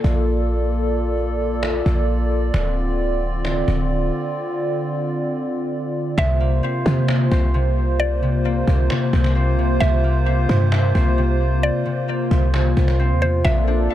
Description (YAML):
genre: hip hop, atmospheric cloud-rap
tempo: 132 BPM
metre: 4/4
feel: half-time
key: unclear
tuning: A4 = 440 Hz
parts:
  - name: hollow soft pad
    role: sustained chords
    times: 0.0-13.9 s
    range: C3 to D5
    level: -22 LUFS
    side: equal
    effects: chorus
  - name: warm 808-style bass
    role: bass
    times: 0.0-13.9 s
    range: D1 to C3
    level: -19 LUFS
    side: equal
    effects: none
  - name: cajon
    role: drums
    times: 0.0-13.9 s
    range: none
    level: -29 LUFS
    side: equal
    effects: vintage 12-bit sampler grit
  - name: mallet-like synth pluck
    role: melody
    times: 6.2-13.9 s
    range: C5 to E5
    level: -27 LUFS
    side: equal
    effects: chorus, ping-pong delay
  - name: concert harp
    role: arpeggios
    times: 6.2-13.9 s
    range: C3 to A4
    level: -25 LUFS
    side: left 2 dB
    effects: ping-pong delay
room: light reverb, small room ambience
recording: none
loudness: -17 LUFS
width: side -12 dB against mid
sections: 0.0-6.2 A section; 6.2-13.9 B section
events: break 4.4-6.2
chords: 0.0 Bbmaj7; 2.5 Dm7; 6.2 C7sus4